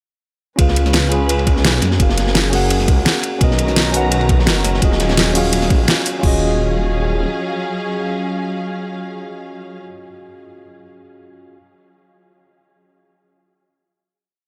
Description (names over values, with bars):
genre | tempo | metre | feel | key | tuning
liquid drum and bass | 170 BPM | 4/4 | swing 53% on 16ths | Eb minor | A4 = 439 Hz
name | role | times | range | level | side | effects
tine electric piano | accompaniment | 0.6-11.6 s | Db4 to Ab5 | -24 LUFS | equal | dub echo
dark symphonic string section | sustained chords | 0.6-9.8 s | D#3 to A#5 | -27 LUFS | equal | vintage 12-bit sampler grit, sidechain pumping
swelling detuned saw bass | bass | 0.6-7.3 s | Eb1 to Gb2 | -20 LUFS | equal | none
crunchy breakbeat drum kit | drums | 0.6-6.2 s | hi-hat, ride cymbal, snare drum | -26 LUFS | equal | high-pass filter on cymbals, high-pass filter on hats, high-pass filter on snare, high-pass filter on room
electronic kick drum | drums | 0.6-6.3 s | none | -18 LUFS | equal | overdrive
pop drum kit | drums | 0.6-6.3 s | crash cymbal, hi-hat, snare drum | -21 LUFS | equal | overdrive
room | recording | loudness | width
studio ambience | none | -16 LUFS | mono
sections
0.6-6.2 drop; 6.2-9.1 final chord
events
drop 0.6-6.2; band accent 5.9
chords
0.6 Db7; 1.8 Gbmaj9; 3.4 Bmaj9; 4.8 Ebm11